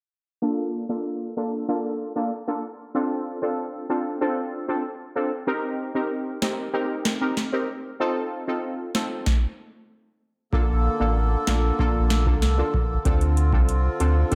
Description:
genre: dancehall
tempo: 95 BPM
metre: 4/4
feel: straight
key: Bb major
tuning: A4 = 440 Hz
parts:
  - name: synth brass stab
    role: accompaniment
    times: 0.4-14.3 s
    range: Bb3 to Bb4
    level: -28 LUFS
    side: equal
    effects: chorus, low-pass filter
  - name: booming analog drum machine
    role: drums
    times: 6.4-14.3 s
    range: hi-hat, kick drum, snare drum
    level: -26 LUFS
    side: equal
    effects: overdrive
  - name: accordion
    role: sustained chords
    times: 10.5-14.3 s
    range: D3 to A4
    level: -32 LUFS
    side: equal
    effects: sidechain pumping
  - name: sub bass with octave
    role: bass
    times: 10.5-14.3 s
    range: A1 to D2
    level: -24 LUFS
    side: equal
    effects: none
room: moderate plate reverb, RT60 1.4 s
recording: dreamy mix soaked in reverb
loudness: -25 LUFS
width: mono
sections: 0.4-10.5 A section; 10.5-14.3 B section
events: filter sweep on synth stab 0.4-10.5; stop 9.3-10.5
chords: 0.4 Bbmaj7; 2.9 Dm7; 5.5 Cm7; 8.0 F7; 10.5 Bbmaj7; 13.1 Dm7

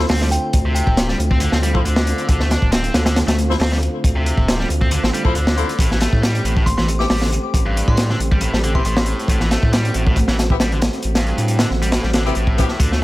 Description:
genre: breakbeat, breaks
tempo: 137 BPM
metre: 4/4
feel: straight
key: unclear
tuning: A4 = 440 Hz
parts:
  - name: tonewheel organ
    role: sustained chords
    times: 0.0-13.0 s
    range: D3 to G4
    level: -26 LUFS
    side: right 2 dB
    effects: overdrive, slow rotary speaker, sidechain pumping
  - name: warm horn section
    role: stabs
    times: 0.0-12.7 s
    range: B3 to C5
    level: -26 LUFS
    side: left 4 dB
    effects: ping-pong delay
  - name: saturated sub bass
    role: bass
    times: 0.0-13.0 s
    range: D1 to A2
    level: -20 LUFS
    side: equal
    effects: tube saturation
  - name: tight distorted guitar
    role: riff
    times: 0.1-13.0 s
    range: G2 to D4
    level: -24 LUFS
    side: equal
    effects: distortion, overdrive, ping-pong delay
  - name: crunchy breakbeat drum kit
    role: drums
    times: 0.1-13.0 s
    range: hi-hat, kick drum, snare drum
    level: -18 LUFS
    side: equal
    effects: none
  - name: glassy synth bell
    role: melody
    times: 0.3-0.9, 6.7-8.9 s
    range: G5 to D6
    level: -28 LUFS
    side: left 1 dB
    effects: chorus, phaser, small speaker sound, ping-pong delay
room: studio reverb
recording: none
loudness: -15 LUFS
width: side -18 dB against mid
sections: 0.0-13.0 A section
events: none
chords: 0.0 Dm7; 5.8 Am7

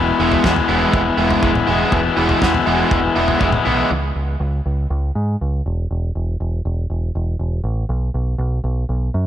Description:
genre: indie rock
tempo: 120 BPM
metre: 4/4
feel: straight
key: E major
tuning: A4 = 441 Hz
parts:
  - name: crunchy overdriven guitar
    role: riff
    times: 0.0-3.9 s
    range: E2 to E4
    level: -17 LUFS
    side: left 6 dB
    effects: slapback echo
  - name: deep dub picked electric bass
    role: bass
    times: 0.0-9.3 s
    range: E1 to G#2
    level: -20 LUFS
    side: right 1 dB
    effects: none
  - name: crunchy overdriven guitar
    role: riff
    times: 0.2-3.9 s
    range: E3 to E4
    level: -20 LUFS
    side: right 6 dB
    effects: analog chorus, analog delay, slapback echo
  - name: loose indie drum kit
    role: drums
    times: 0.3-3.6 s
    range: kick drum, snare drum, toms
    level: -22 LUFS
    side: equal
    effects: none
room: moderate lush hall reverb, RT60 2.1 s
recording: big arena sound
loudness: -16 LUFS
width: side -11 dB against mid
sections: 0.0-3.9 A section; 3.9-9.3 B section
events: none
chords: 0.0 E; 3.9 C#5; 5.6 N.C.; 7.9 B5

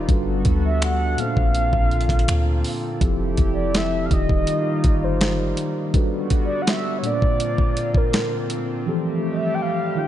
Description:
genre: contemporary R&B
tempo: 82 BPM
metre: 4/4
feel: straight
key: F major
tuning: A4 = 435 Hz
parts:
  - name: mellow tine electric piano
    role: accompaniment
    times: 0.0-10.1 s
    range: Bb2 to F5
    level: -26 LUFS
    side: left 1 dB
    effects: medium stereo tremolo
  - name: chorused pulse-width pad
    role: sustained chords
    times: 0.0-10.1 s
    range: D3 to A4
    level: -28 LUFS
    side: equal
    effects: none
  - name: clean 808-style bass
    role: bass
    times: 0.0-5.5 s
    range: Eb1 to D2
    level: -23 LUFS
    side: equal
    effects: none
  - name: dusty soul sampler-style drum kit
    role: drums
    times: 0.1-8.7 s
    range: finger snaps, hi-hat, kick drum, snare drum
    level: -21 LUFS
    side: equal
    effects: none
  - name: mellow horn-like synth lead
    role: melody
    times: 0.6-10.1 s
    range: Bb4 to G5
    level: -26 LUFS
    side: equal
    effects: chorus, tape echo
room: moderate church reverb, RT60 3.3 s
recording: dreamy mix soaked in reverb, nothing above 11.0 kHz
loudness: -18 LUFS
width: side -12 dB against mid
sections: 0.0-10.1 A section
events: none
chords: 0.1 Gmaj9; 1.2 Bbmaj9; 3.0 Fmaj9; 4.1 Ebadd9; 5.9 Gmaj9; 7.0 Bbadd9; 8.9 Fmaj9

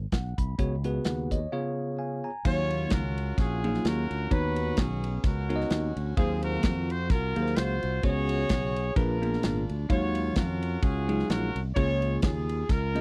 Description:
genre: uptempo gospel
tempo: 129 BPM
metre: 4/4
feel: swing 56% on 8ths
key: unclear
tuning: A4 = 437 Hz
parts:
  - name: fingered electric bass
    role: bass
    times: 0.0-13.0 s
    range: G#1 to E#2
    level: -33 LUFS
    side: equal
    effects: none
  - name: bell-like tine electric piano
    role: accompaniment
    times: 0.1-13.0 s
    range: A#2 to B5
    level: -33 LUFS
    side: equal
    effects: none
  - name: modern studio drum kit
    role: drums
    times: 0.1-13.0 s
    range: crash cymbal, hi-hat, kick drum, ride cymbal, snare drum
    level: -30 LUFS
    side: equal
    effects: none
  - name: warm horn section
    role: melody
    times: 2.5-13.0 s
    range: B3 to C#5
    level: -34 LUFS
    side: equal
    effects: none
room: little or no reverb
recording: dry, close 1970s-style studio recording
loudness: -28 LUFS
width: mono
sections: 0.0-2.5 A section; 2.5-13.0 B section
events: tine electric piano fill 1.1-2.5; break 1.5-2.5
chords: 0.0 G#m7 (rootless); 0.6 C#7sus4; 1.5 C#7; 2.5 D#m9; 4.3 Bmaj9; 6.2 G#13/D#; 8.0 C#7sus4; 9.0 A#7b9; 9.9 D#m11; 11.8 A#m7/C#

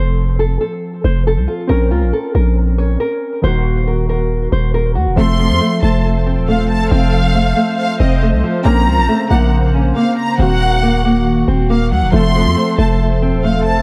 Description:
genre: hip hop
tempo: 138 BPM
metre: 4/4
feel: half-time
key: unclear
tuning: A4 = 442 Hz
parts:
  - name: nylon-string guitar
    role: melody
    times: 0.0-13.8 s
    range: F3 to Db5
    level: -21 LUFS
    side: equal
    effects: low-pass filter, tape echo
  - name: warbly lo-fi synth keys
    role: accompaniment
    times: 0.0-13.8 s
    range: Eb3 to Bb4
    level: -24 LUFS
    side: equal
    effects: chorus, low-pass filter
  - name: growling 808-style bass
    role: bass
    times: 0.0-13.8 s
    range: Eb1 to F2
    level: -17 LUFS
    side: equal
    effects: none
  - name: rich studio violin section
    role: second line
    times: 5.2-13.8 s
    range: Eb5 to C6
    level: -22 LUFS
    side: equal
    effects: tape echo
  - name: hollow soft pad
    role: sustained chords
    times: 5.2-13.8 s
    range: Db3 to C5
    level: -25 LUFS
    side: equal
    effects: ensemble chorus
room: light reverb, small room ambience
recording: echo-heavy mix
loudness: -15 LUFS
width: mono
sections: 0.0-5.2 A section; 5.2-13.8 B section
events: none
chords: 0.0 F; 1.7 Bbmadd9; 3.4 Ebm; 5.2 F; 8.7 Bbmadd9; 10.4 Ebm; 12.1 F

